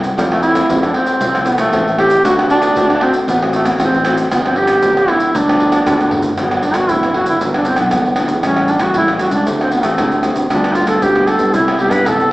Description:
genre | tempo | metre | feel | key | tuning
samba and choro | 116 BPM | 4/4 | straight | G major from 6.4 s | A4 = 440 Hz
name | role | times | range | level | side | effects
nylon-string guitar | accompaniment | 0.0-12.3 s | G2 to G4 | -21 LUFS | left 1 dB | none
modern bright fingered electric bass | bass | 0.0-12.3 s | G1 to G2 | -21 LUFS | equal | none
maracas, surdo, pandeiro and tamborim | percussion | 0.0-12.3 s | none | -17 LUFS | equal | none
warm duduk | melody | 0.2-12.3 s | G3 to B4 | -15 LUFS | equal | none
room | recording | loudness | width
wet large studio reverb, RT60 1.2 s | band playing live in one room, small speaker sound | -12 LUFS | side -18 dB against mid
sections
0.0-6.4 A section; 6.4-12.3 B section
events
drum fill 6.0-6.4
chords
0.2 Fmaj7; 2.2 D7; 4.3 G7; 6.4 Gmaj7; 7.4 Em7/G; 8.4 A7; 9.5 D7sus4; 10.5 G7/D; 11.5 Cmaj7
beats
| 0.18 0.69 1.21 1.73 | 2.24 2.76 3.28 3.79 | 4.31 4.83 5.34 5.86 | 6.37 6.89 7.41 7.92 | 8.44 8.96 9.47 9.99 | 10.51 11.03 11.54 12.06

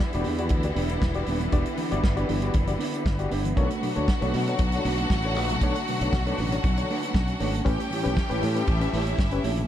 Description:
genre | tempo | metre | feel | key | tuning
disco | 118 BPM | 4/4 | straight | B minor | A4 = 443 Hz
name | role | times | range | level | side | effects
mellow electric guitar | accompaniment | 0.0-9.6 s | A3 to C#5 | -32 LUFS | right 3 dB | tremolo
rich studio string section | sustained chords | 0.0-9.7 s | D3 to G4 | -32 LUFS | left 1 dB | none
warm soul drum kit | drums | 0.0-9.7 s | hi-hat, kick drum, snare drum | -27 LUFS | equal | none
reed electric piano | accompaniment | 0.1-9.7 s | A2 to D5 | -31 LUFS | left 5 dB | overdrive, fast tremolo
modern bright fingered electric bass | bass | 0.1-9.6 s | D#1 to B2 | -28 LUFS | equal | none
clear studio violin section | second line | 3.6-9.7 s | E4 to G5 | -33 LUFS | equal | none
room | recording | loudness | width
light reverb, small room ambience | dark, warm production | -23 LUFS | side -11 dB against mid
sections
0.0-9.7 A section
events
none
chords
0.0 Em7; 3.6 Bm7; 7.7 A7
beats
0.00 0.51 1.02 | 1.53 2.04 2.56 3.07 | 3.58 4.09 4.60 5.11 | 5.62 6.13 6.64 7.15 | 7.66 8.17 8.68 9.19

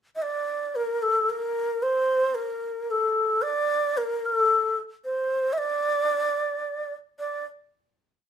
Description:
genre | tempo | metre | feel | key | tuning
arabic | free time | none | none | D maqam saba | A4 = 440 Hz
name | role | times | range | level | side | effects
breathy bright low ney | solo | 0.2-7.4 s | A4 to E5-48c | -23 LUFS | equal | none
room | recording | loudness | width
moderate studio reverb, RT60 0.6 s | minimal, uncompressed stereo recording | -23 LUFS | side -8 dB against mid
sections
0.0-0.7 pickup bar; 0.7-7.2 A section; 7.2-8.3 final note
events
none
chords
none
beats
free time

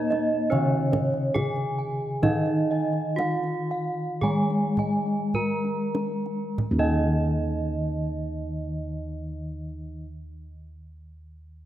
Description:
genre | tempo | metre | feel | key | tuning
Javanese gamelan | 46-78 BPM | 4/4 | straight | Eb slendro | A4 = 440 Hz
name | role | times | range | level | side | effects
gamelan-type bronze metallophone | melody | 0.0-10.0 s | Db4-40c to Bb4+20c | -31 LUFS | right 1 dB | none
gamelan-type bronze metallophone | accompaniment | 0.0-10.0 s | Db3-40c to Bb3+20c | -28 LUFS | left 1 dB | none
gamelan-type bossed gongs | arpeggios | 0.0-10.1 s | Eb5 to Bb5+20c | -37 LUFS | left 4 dB | none
gamelan-type bronze metallophone | arpeggios | 0.0-10.1 s | Db5-40c to Bb5+20c | -30 LUFS | right 3 dB | none
gamelan-type bossed gongs | bass | 0.0-10.0 s | Eb2 to Bb4+20c | -31 LUFS | right 1 dB | none
kendang | percussion | 0.1-7.2 s | none | -31 LUFS | right 2 dB | none
room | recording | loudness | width
wet lush hall reverb, RT60 2.2 s | rough home demo mix | -24 LUFS | side -12 dB against mid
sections
0.0-6.6 A section; 6.6-11.7 B section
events
slowing down 0.0-6.6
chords
none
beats
0.52 1.35 | 2.24 3.20 4.23 5.36 | 6.60 7.90 9.19

